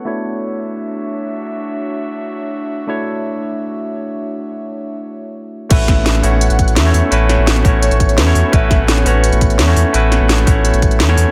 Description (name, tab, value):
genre	liquid drum and bass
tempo	170 BPM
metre	4/4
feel	straight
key	A major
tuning	A4 = 442 Hz
part	barky tine electric piano	accompaniment	0.0-11.3 s	A3 to C#5	-22 LUFS	equal	delay
part	airy breathy pad	sustained chords	0.0-11.3 s	B3 to E5	-29 LUFS	equal	chorus, sidechain pumping
part	warm velvety synth lead	melody	5.7-9.8 s	B4 to F#5	-27 LUFS	equal	chorus, dub echo
part	sub bass with octave	bass	5.7-11.3 s	A1 to E2	-16 LUFS	equal	tube saturation
part	electronic kick drum	drums	5.7-10.9 s	none	-16 LUFS	equal	none
part	garage drum kit	drums	5.7-11.2 s	crash cymbal, hi-hat, snare drum	-21 LUFS	equal	none
room	little or no reverb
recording	low-pass filter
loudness	-15 LUFS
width	mono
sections	0.0-5.7 A section; 5.7-11.3 B section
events	filter sweep 0.0-5.7; break 5.0-5.7; drop 5.7-11.3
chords	0.1 Dmaj9; 5.7 A69